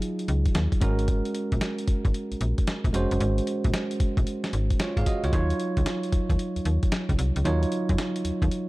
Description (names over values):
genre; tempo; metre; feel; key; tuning
R&B, new jack swing; 113 BPM; 4/4; swing 66% on 16ths; Eb dorian; A4 = 440 Hz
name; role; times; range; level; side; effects
bell-like tine electric piano; accompaniment; 0.0-8.7 s; Gb3 to F5; -28 LUFS; right 2 dB; none
dusty soul sampler-style drum kit; drums; 0.0-8.7 s; hi-hat, kick drum, snare drum; -26 LUFS; equal; none
slap-like FM bass; bass; 0.3-8.5 s; F1 to Ab2; -25 LUFS; equal; none
room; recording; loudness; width
little or no reverb; dark, warm production; -23 LUFS; side -20 dB against mid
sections
0.0-8.7 A section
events
tine electric piano fill 8.5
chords
0.0 Ebm9; 0.8 Ab9sus4; 5.3 Ebm9